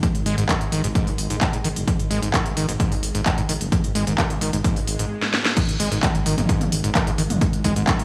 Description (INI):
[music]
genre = driving peak-time techno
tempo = 130 BPM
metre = 4/4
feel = straight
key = unclear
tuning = A4 = 440 Hz
[part]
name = overdriven acid bass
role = riff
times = 0.0-7.9 s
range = F#2 to G#3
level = -29 LUFS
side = equal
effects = distortion, sidechain pumping, dub echo
[part]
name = metallic inharmonic drone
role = drone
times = 0.0-8.0 s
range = G#2 to G#3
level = -35 LUFS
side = equal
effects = none
[part]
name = electronic kick drum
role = drums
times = 0.0-8.0 s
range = none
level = -25 LUFS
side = equal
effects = none
[part]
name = techno drum kit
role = drums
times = 0.0-8.0 s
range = crash cymbal, handclaps, hi-hat, snare drum, toms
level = -27 LUFS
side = equal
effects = sidechain pumping on hats, sidechain pumping on cymbals, sidechain pumping on toms
[part]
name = dark detuned saw bass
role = bass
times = 0.1-8.0 s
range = F#1 to G#1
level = -29 LUFS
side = equal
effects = sidechain pumping
[part]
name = swell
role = sound effects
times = 4.8-5.6 s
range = none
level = -38 LUFS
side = equal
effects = none
[sound]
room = little or no reverb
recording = studio reverb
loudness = -22 LUFS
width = mono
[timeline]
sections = 0.0-5.6 A section; 5.6-8.0 B section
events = swell 4.8-5.6; drum fill 5.2-5.6; band accent 5.5; drop 5.6-8.0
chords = 0.0 G#5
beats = | 0.03 0.49 0.95 1.41 | 1.88 2.34 2.80 3.26 | 3.72 4.18 4.64 5.11 | 5.57 6.03 6.49 6.95 | 7.41 7.88